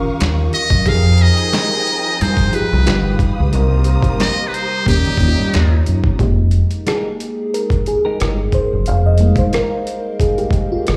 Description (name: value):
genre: R&B, neo-soul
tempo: 90 BPM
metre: 4/4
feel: swing 54% on 16ths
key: F minor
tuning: A4 = 441 Hz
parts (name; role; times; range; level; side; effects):
- FM electric piano with soft pad layer; accompaniment; 0.0-11.0 s; C3 to F5; -22 LUFS; equal; chorus
- warm studio string section; sustained chords; 0.0-6.2 s; F4 to Eb6; -32 LUFS; equal; none
- mellow horn section; stabs; 0.0-5.8 s; Bb2 to Bb4; -32 LUFS; equal; slapback echo
- deep dub fingered electric bass; bass; 0.2-11.0 s; F1 to Eb3; -16 LUFS; equal; none
- boom bap sampler-style drum kit; drums; 0.2-11.0 s; handclaps, hi-hat, kick drum, rim click, snare drum; -21 LUFS; equal; overdrive
- trumpet with metal mute; melody; 0.5-5.8 s; G4 to F5; -21 LUFS; equal; slapback echo
- clean electric guitar; second line; 1.5-9.7 s; Ab3 to Bb4; -28 LUFS; equal; slapback echo
room: studio reverb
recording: live gig heard through the venue's PA, club reverb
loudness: -16 LUFS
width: mono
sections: 0.0-6.2 A section; 6.2-11.0 B section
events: FM electric piano solo 6.2-11.0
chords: 0.0 Eb9; 0.9 Fm11; 2.9 Gaug7; 3.5 Cm7; 4.9 Eb7; 6.2 Fm11